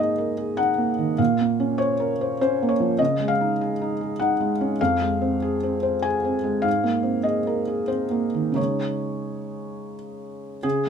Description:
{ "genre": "neoclassical minimalist piano", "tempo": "85-102 BPM", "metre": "3/4", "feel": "rubato", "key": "Db major", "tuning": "A4 = 440 Hz", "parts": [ { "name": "felt-muted upright piano", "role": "solo", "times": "0.0-10.9 s", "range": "F2 to Ab5", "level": "-21 LUFS", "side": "equal", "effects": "none" } ], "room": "moderate studio reverb, RT60 0.6 s", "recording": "minimal, uncompressed stereo recording", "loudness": "-21 LUFS", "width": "side -7 dB against mid", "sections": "0.0-10.6 A section", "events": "none", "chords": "0.0 Abadd9; 1.2 Bbmadd9; 3.0 Dbsus2; 4.8 Fm; 6.7 Abadd9; 8.6 Dbsus2" }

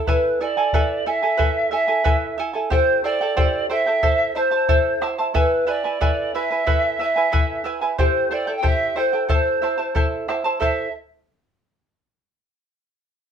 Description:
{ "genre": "andean folk, Andean ensemble", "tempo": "91 BPM", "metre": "2/4", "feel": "straight", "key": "unclear", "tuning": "A4 = 441 Hz", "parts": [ { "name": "charango", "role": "accompaniment", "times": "0.0-10.9 s", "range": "E4 to A5", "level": "-23 LUFS", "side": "right 4 dB", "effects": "none" }, { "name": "polished pan flute", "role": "melody", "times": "0.1-10.9 s", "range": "B4 to G5", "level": "-20 LUFS", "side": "right 1 dB", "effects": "none" }, { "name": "bombo", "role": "percussion", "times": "0.1-10.9 s", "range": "none", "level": "-21 LUFS", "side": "left 3 dB", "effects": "none" } ], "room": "wet studio reverb, RT60 0.6 s", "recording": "minimal, uncompressed stereo recording", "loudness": "-18 LUFS", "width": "side -8 dB against mid", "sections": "0.1-10.6 A section; 10.6-11.9 B section", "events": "none", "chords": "0.1 E; 2.7 C; 4.0 Am; 5.3 E; 8.0 C; 9.3 Am" }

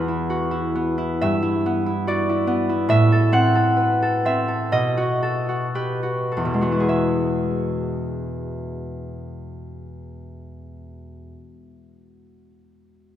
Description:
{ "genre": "classical, solo harp piece", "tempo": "50-73 BPM", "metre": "4/4", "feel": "rubato", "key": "unclear", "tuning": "A4 = 440 Hz", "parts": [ { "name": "concert harp", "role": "solo", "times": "0.0-11.8 s", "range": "E2 to F#5", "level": "-20 LUFS", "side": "equal", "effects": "none" } ], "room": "wet church reverb, RT60 3.0 s", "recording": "none", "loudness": "-19 LUFS", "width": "side -11 dB against mid", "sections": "0.0-6.9 A section; 6.9-10.9 B section", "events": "slowing down 0.0-6.9", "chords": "0.0 E5; 1.2 Em/G; 2.9 F#dim/A; 4.7 B7; 6.9 E" }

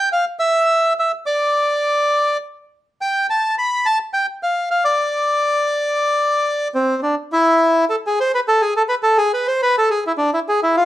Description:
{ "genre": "tango", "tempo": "104 BPM", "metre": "4/4", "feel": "rubato", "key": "A harmonic minor from 7.3 s", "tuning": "A4 = 440 Hz", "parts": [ { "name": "bandoneon", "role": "solo", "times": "0.0-10.9 s", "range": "C4 to B5", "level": "-15 LUFS", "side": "equal", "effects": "none" } ], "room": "moderate club reverb, RT60 0.8 s", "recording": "none", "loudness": "-15 LUFS", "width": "side -14 dB against mid", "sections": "0.0-7.3 A section; 7.3-10.9 B section", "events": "none", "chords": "none" }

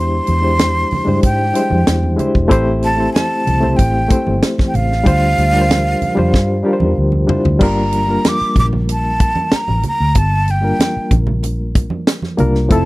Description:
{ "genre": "lush 1970s-style soul", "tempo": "94 BPM", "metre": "4/4", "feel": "straight", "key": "unclear", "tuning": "A4 = 439 Hz", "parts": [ { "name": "breathy jazz flute", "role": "melody", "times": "0.0-12.9 s", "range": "F5 to D6", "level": "-18 LUFS", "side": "right 1 dB", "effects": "none" }, { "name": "barky reed electric piano", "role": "accompaniment", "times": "0.0-12.9 s", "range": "F3 to B#4", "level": "-18 LUFS", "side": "left 1 dB", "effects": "fast tremolo" }, { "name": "vintage muted fingered electric bass", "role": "bass", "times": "0.0-12.9 s", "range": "E1 to G#2", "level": "-17 LUFS", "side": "equal", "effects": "none" }, { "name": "tight funk drum kit", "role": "drums", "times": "0.3-12.9 s", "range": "crash cymbal, hi-hat, kick drum, snare drum, toms", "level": "-15 LUFS", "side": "equal", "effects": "none" }, { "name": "congas", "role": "percussion", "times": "0.3-12.5 s", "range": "none", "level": "-25 LUFS", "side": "right 3 dB", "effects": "none" }, { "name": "string machine, violins", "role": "sustained chords", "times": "12.7-12.9 s", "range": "C3 to E4", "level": "-22 LUFS", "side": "right 3 dB", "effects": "none" } ], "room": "little or no reverb", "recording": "dry, close 1970s-style studio recording", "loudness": "-12 LUFS", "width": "side -19 dB against mid", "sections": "0.0-7.6 A section; 7.6-12.9 B section", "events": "drum fill 6.3-7.6", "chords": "0.0 E7alt; 2.5 Am7; 5.1 Dm11; 7.6 Gm7" }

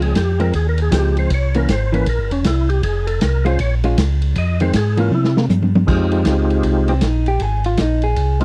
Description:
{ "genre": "soul jazz organ trio", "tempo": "157 BPM", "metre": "4/4", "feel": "swing 64% on 8ths", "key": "F minor", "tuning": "A4 = 442 Hz", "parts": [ { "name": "percussive tonewheel organ", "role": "melody", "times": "0.0-8.4 s", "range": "Ab3 to Eb5", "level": "-24 LUFS", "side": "equal", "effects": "slow rotary speaker, overdrive, chorus vibrato" }, { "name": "vintage hollow-body jazz guitar", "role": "accompaniment", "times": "0.0-8.4 s", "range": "Eb3 to Ab4", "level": "-23 LUFS", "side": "equal", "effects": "none" }, { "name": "mellow tonewheel organ", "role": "bass", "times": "0.0-8.4 s", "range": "E1 to C3", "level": "-20 LUFS", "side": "equal", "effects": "slow rotary speaker" }, { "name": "vintage drum kit", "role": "drums", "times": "0.0-8.4 s", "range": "crash cymbal, hi-hat, kick drum, ride cymbal, snare drum, toms", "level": "-24 LUFS", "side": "equal", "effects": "none" } ], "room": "little or no reverb", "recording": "dry, close 1970s-style studio recording", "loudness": "-17 LUFS", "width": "mono", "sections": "0.0-5.9 A section; 5.9-8.4 A section", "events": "tonewheel organ solo 0.0-5.9; drum fill 5.1-5.9; hollow-body jazz guitar solo 5.9-8.4", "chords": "0.0 Dbmaj7; 1.3 C7b9; 2.8 Fm; 3.6 Bbm7; 4.4 Fm7; 5.1 C5; 5.9 Fm7" }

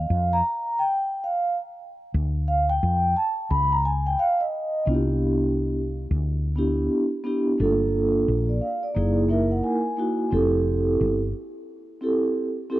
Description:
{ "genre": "hip hop, jazz-hop", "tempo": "88 BPM", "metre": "4/4", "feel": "swing 62% on 16ths", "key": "C major", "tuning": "A4 = 440 Hz", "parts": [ { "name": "vibraphone with soft mallets", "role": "accompaniment", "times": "0.0-12.8 s", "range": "A3 to Cb6", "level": "-23 LUFS", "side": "right 1 dB", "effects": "none" }, { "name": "woody fretless electric bass", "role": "bass", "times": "0.0-11.3 s", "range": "F1 to F2", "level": "-24 LUFS", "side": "left 1 dB", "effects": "none" } ], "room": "light reverb", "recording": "dark, warm production", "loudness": "-21 LUFS", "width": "side -16 dB against mid", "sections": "0.0-4.9 A section; 4.9-12.8 B section", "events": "vibraphone solo 0.0-4.9; vibraphone fill 9.0-10.3", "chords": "0.0 Ebsus2 (rootless); 2.1 Dm; 3.5 Db9; 4.9 Cmaj7; 7.6 Gm7; 9.0 F#13; 10.3 Fmaj9" }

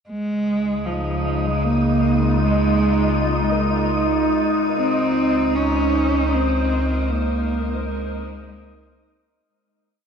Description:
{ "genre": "ambient", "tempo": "77 BPM", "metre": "3/4", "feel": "straight", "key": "Db major", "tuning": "A4 = 440 Hz", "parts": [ { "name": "dark cello", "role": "melody", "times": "0.1-9.1 s", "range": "F3 to Db4", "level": "-22 LUFS", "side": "right 1 dB", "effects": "ping-pong delay" }, { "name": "evolving wavetable pad", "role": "sustained chords", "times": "0.7-9.5 s", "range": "Db3 to C5", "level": "-22 LUFS", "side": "equal", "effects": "chorus, built-in reverb, shimmer reverb" }, { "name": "round analog bass", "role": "bass", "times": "0.1-9.4 s", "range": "Db2", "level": "-26 LUFS", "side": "left 1 dB", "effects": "none" }, { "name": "wind-like tuned noise texture", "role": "texture", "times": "0.4-9.5 s", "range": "Eb5 to Eb6", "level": "-27 LUFS", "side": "left 1 dB", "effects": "built-in reverb, shimmer reverb" }, { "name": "felt-muted upright piano", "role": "arpeggios", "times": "1.0-10.1 s", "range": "Ab3 to C5", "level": "-38 LUFS", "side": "left 4 dB", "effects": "none" } ], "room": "wet cathedral reverb, RT60 5.4 s", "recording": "cassette tape", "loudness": "-18 LUFS", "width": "side -6 dB against mid", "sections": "0.1-9.5 A section", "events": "fade-out 6.3-9.5", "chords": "0.1 Dbadd9" }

